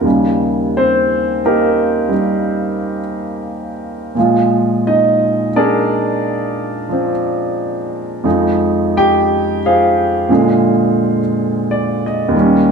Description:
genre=solo jazz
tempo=59 BPM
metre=4/4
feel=swing 66% on 8ths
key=Bb mixolydian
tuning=A4 = 440 Hz
part: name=warm upright piano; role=solo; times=0.0-12.7 s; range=Eb2 to G5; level=-13 LUFS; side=right 1 dB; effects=none
room=wet stone room reverb, RT60 1.3 s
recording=band playing live in one room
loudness=-13 LUFS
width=side -5 dB against mid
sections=0.0-12.7 A section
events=upright piano solo 0.0-12.7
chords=0.0 Eb7; 4.2 Bb7; 8.2 Fm7; 10.3 Bb7

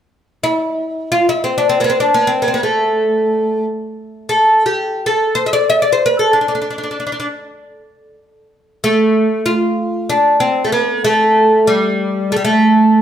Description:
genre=turkish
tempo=free time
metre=none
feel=none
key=unclear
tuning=A4 = 439 Hz
part: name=oud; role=solo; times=0.4-13.0 s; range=G3 to E5-30c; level=-12 LUFS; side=equal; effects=none
room=moderate recital hall reverb, RT60 1.3 s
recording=none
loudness=-12 LUFS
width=side -9 dB against mid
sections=0.0-8.8 A section; 8.8-13.0 B section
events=none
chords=none

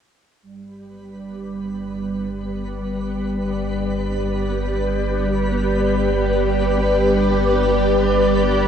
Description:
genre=ambient, sequencer-driven space music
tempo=free time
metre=none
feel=none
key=G major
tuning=A4 = 441 Hz
part: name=string machine, full ensemble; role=sustained chords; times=0.4-8.7 s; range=G3 to D5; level=-19 LUFS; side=equal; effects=phaser, ensemble chorus, shimmer reverb
part: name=warm sub bass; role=bass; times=0.4-8.7 s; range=G1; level=-25 LUFS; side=equal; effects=none
part: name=twinkling granular texture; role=texture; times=1.3-8.7 s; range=B3 to B4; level=-28 LUFS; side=equal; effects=built-in reverb, shimmer reverb
room=wet huge ambient reverb, RT60 7.8 s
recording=worn, warbling old tape, cassette tape, warbly pitch drift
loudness=-18 LUFS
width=side -8 dB against mid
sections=0.4-8.7 A section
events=fade-in on string machine 0.4-8.7; fade-in on sub bass 0.4-8.7; fade-in on synth texture 0.4-8.7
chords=0.4 G

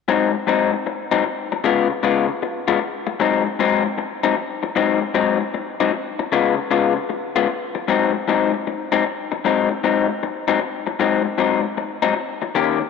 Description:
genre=blues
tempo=154 BPM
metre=4/4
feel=swing 66% on 8ths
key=Ab mixolydian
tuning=A4 = 440 Hz
part: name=electric guitar through a small old amp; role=solo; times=0.1-12.8 s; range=Ab2 to G4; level=-18 LUFS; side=left 7 dB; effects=spring reverb
room=moderate plate reverb, RT60 3.4 s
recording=none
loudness=-18 LUFS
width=side -5 dB against mid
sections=0.1-12.9 A section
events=none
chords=0.1 Ab7; 1.7 Db7; 3.2 Ab7; 6.3 Db7; 7.9 Ab7

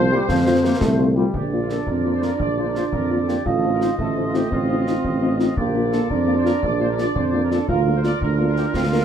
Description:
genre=military-style march for wind band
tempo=114 BPM (dotted quarters)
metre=6/8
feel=straight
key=Bb major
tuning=A4 = 440 Hz
part: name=mellow trumpet section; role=melody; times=0.0-9.0 s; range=F4 to D5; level=-31 LUFS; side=equal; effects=none
part: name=warm woodwind section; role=second line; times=0.0-9.0 s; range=F4 to Eb5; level=-28 LUFS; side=equal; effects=none
part: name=bright trombone section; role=sustained chords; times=0.0-1.3 s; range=F3 to Bb3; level=-23 LUFS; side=equal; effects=none
part: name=mellow tuba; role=bass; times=0.0-9.0 s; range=A1 to F2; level=-22 LUFS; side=right 1 dB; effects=none
part: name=mellow French horn section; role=accompaniment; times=0.1-9.0 s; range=A3 to F4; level=-26 LUFS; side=left 4 dB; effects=none
part: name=concert snare drum and concert bass drum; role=drums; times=0.3-9.0 s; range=none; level=-29 LUFS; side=left 1 dB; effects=none
part: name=warm euphonium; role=second line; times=1.3-9.0 s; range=A3 to F4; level=-23 LUFS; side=right 6 dB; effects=none
room=moderate studio reverb, RT60 0.9 s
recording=none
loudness=-18 LUFS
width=side -8 dB against mid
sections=0.0-1.3 A section; 1.3-9.0 B section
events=none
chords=0.3 F; 1.3 Bb; 3.5 F7/A; 5.6 Bb; 7.7 Bb/D

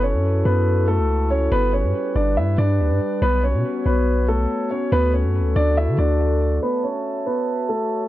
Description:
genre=hip hop, drill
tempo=141 BPM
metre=4/4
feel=half-time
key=unclear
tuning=A4 = 443 Hz
part: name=dark baby grand piano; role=melody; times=0.0-8.1 s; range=A3 to E5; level=-22 LUFS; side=right 1 dB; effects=low-pass filter, tape echo
part: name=glass harmonica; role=sustained chords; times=0.0-8.1 s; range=G3 to A5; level=-25 LUFS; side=left 2 dB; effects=none
part: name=long sustained 808-style bass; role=bass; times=0.0-6.6 s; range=F#1 to D3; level=-19 LUFS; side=equal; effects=none
room=small room ambience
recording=dry, gritty hardware recording, low-pass filter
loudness=-18 LUFS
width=side -14 dB against mid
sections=0.0-6.6 A section; 6.6-8.1 B section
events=none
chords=0.0 F#m7; 1.5 G; 3.2 Bsus2; 4.9 D; 6.6 F#m7

